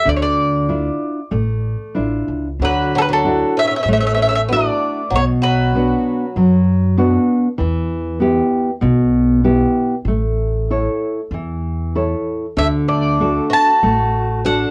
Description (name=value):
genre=fado-style ballad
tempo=96 BPM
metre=4/4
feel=rubato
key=D major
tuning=A4 = 440 Hz
part: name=mandolin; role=melody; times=0.0-6.6, 12.6-14.7 s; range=A4 to A5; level=-20 LUFS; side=equal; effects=none
part: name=nylon-string guitar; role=accompaniment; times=0.1-14.7 s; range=B2 to C#5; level=-20 LUFS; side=equal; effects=none
part: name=upright bass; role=bass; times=0.1-14.6 s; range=A1 to F#2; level=-23 LUFS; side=equal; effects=transformer saturation
part: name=picked twelve-string acoustic guitar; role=second line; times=2.6-6.6, 12.6-14.7 s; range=F#3 to F#4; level=-26 LUFS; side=equal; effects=none
room=wet small room reverb, RT60 0.5 s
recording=worn, warbling old tape, cassette tape, warbly pitch drift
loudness=-17 LUFS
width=mono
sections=0.0-2.6 A section; 2.6-14.7 B section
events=none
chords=0.1 Dmadd9; 2.6 Dadd9; 5.1 Bm; 7.6 Em; 10.1 A; 12.6 D